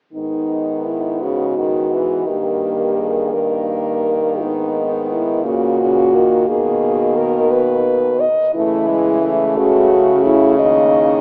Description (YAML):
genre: classical, lyrical piece for horn quartet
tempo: 58 BPM (dotted quarters)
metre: 6/8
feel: rubato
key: G# minor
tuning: A4 = 441 Hz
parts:
  - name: mellow French horn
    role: melody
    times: 0.1-11.2 s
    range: D#4 to D#5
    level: -19 LUFS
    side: equal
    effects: none
  - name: clear French horn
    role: second line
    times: 0.1-11.2 s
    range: G#3 to B3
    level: -26 LUFS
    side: equal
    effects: none
  - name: clear French horn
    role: accompaniment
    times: 0.1-11.2 s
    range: C#3 to E3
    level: -22 LUFS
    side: equal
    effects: none
  - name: warm French horn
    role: bass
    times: 0.1-11.2 s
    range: G2 to D#3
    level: -25 LUFS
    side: equal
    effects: none
room: wet cathedral reverb, RT60 4.5 s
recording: AM radio sound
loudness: -16 LUFS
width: mono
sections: 0.1-11.2 A section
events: none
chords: 0.1 G#m; 2.3 D#/G; 4.4 G#m; 6.5 G#m/B; 8.6 A/C#; 10.6 D#5